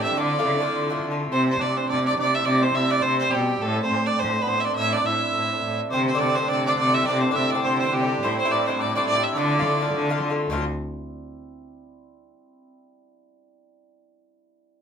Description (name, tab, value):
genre	celtic folk, Celtic reel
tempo	209 BPM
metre	4/4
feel	swing 57% on 8ths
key	D minor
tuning	A4 = 439 Hz
part	warm fiddle	melody	0.0-10.2 s	G4 to E5	-24 LUFS	right 4 dB	none
part	cimbalom	second line	0.0-12.7 s	G3 to E4	-29 LUFS	right 4 dB	none
part	tin whistle	second line	0.0-10.2 s	G5 to E6	-28 LUFS	left 5 dB	none
part	Irish bouzouki	accompaniment	0.0-1.3, 5.9-10.6 s	G2 to G4	-27 LUFS	left 4 dB	none
part	warm cello	bass	0.0-10.7 s	D2 to D3	-26 LUFS	equal	none
room	moderate studio reverb, RT60 0.6 s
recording	minimal, uncompressed stereo recording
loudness	-20 LUFS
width	side -7 dB against mid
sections	0.0-1.3 A section; 1.3-10.5 A section; 10.5-11.6 B section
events	none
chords	0.2 Dm; 1.3 C5; 3.6 Am; 5.9 Csus2; 8.2 Am7; 9.4 Dm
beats	| 0.16 0.45 0.73 1.02 | 1.31 1.60 1.89 2.18 | 2.46 2.75 3.04 3.33 | 3.62 3.91 4.20 4.49 | 4.78 5.06 5.35 5.64 | 5.93 6.21 6.50 6.79 | 7.08 7.36 7.65 7.93 | 8.22 8.51 8.79 9.08 | 9.36 9.65 9.94 10.22 | 10.51 10.79 11.08 11.36